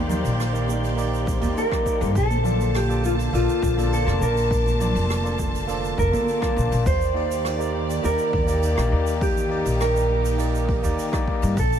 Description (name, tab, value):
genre	sunset chillout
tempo	102 BPM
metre	4/4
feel	straight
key	unclear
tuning	A4 = 441 Hz
part	overdriven tine electric piano	accompaniment	0.0-11.6 s	Bb3 to A5	-28 LUFS	moving between left 7 dB and right 8 dB	auto-pan, tape echo
part	warm studio string section	sustained chords	0.0-11.8 s	D3 to A5	-31 LUFS	left 1 dB	none
part	upright bass	bass	0.0-11.8 s	F1 to G2	-24 LUFS	equal	none
part	wind-like tuned noise texture	texture	0.0-6.9 s	C5 to C6	-38 LUFS	left 1 dB	built-in reverb
part	jazz brush drum kit	drums	0.1-11.8 s	hi-hat, rim click, shaker	-37 LUFS	right 3 dB	none
part	congas and bongos	percussion	0.1-6.5 s	none	-31 LUFS	right 3 dB	none
part	electronic kick drum	drums	1.3-11.7 s	none	-26 LUFS	equal	overdrive
part	mellow electric guitar	melody	1.6-11.8 s	F4 to C5	-25 LUFS	right 1 dB	tape echo
room	light reverb, small room ambience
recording	none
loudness	-20 LUFS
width	side -9 dB against mid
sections	0.0-6.9 A section; 6.9-11.8 B section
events	none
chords	0.0 Ebmaj7; 2.2 Bbmaj7; 6.9 Ebmaj7